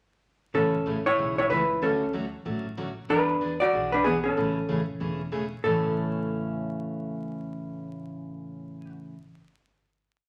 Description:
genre	country, western swing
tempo	188 BPM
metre	4/4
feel	swing 61% on 8ths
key	A major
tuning	A4 = 440 Hz
part	hollow-body jazz guitar	melody	0.5-8.9 s	B3 to D5	-27 LUFS	equal	none
part	picked steel-string acoustic guitar	accompaniment	0.5-9.2 s	A2 to G#4	-34 LUFS	equal	none
part	upright bass	bass	0.5-8.9 s	E1 to E2	-43 LUFS	equal	none
room	moderate large studio reverb, RT60 0.9 s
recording	vinyl crackle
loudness	-27 LUFS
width	mono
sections	0.5-5.6 A section; 5.6-8.2 final chord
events	none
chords	0.5 Amaj7; 1.8 Dmaj7; 3.1 E9; 4.4 Amaj7; 5.6 A

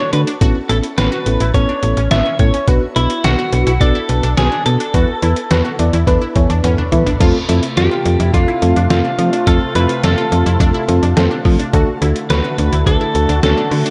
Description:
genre	synth-pop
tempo	106 BPM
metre	4/4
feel	straight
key	unclear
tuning	A4 = 442 Hz
part	twelve-string electric guitar	melody	0.0-13.9 s	E4 to E5	-22 LUFS	equal	slapback echo, shimmer reverb
part	unison pluck	arpeggios	0.0-13.9 s	B3 to F#4	-27 LUFS	equal	phaser, slapback echo, shimmer reverb
part	mellow FM electric piano	accompaniment	0.1-13.9 s	A3 to A5	-21 LUFS	equal	chorus, shimmer reverb
part	slap-like FM bass	bass	0.1-13.8 s	A1 to F3	-18 LUFS	equal	none
part	trip hop sampler-style drum kit	drums	0.1-13.9 s	crash cymbal, hi-hat, kick drum, snare drum, toms	-20 LUFS	equal	gated reverb
part	sweeping resonant pad	sustained chords	7.2-13.9 s	C3 to F#4	-26 LUFS	equal	chorus, shimmer reverb
room	light reverb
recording	none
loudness	-15 LUFS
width	mono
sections	0.0-7.2 A section; 7.2-13.9 B section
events	FM electric piano fill 6.1-7.2; drum fill 6.6-7.2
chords	0.4 Aadd9; 2.7 Bm; 4.9 Esus4; 7.2 F; 11.7 D

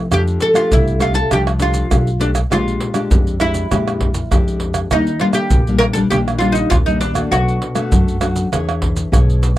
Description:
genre	samba and choro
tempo	100 BPM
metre	4/4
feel	straight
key	unclear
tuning	A4 = 441 Hz
part	nylon-string guitar	accompaniment	0.0-9.6 s	F2 to C#5	-20 LUFS	left 3 dB	none
part	upright bass	bass	0.0-9.6 s	Bb1 to F#2	-19 LUFS	equal	none
part	oud	melody	0.1-7.9 s	D4 to Bb4	-18 LUFS	right 1 dB	none
part	maracas, surdo, pandeiro and tamborim	percussion	0.1-9.6 s	none	-18 LUFS	right 1 dB	none
room	light reverb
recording	dry, close 1970s-style studio recording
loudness	-14 LUFS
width	side -14 dB against mid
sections	0.1-9.6 A section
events	none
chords	0.1 F69; 2.5 Bb6; 4.9 Ebmaj7; 7.3 Bm7; 8.5 E6

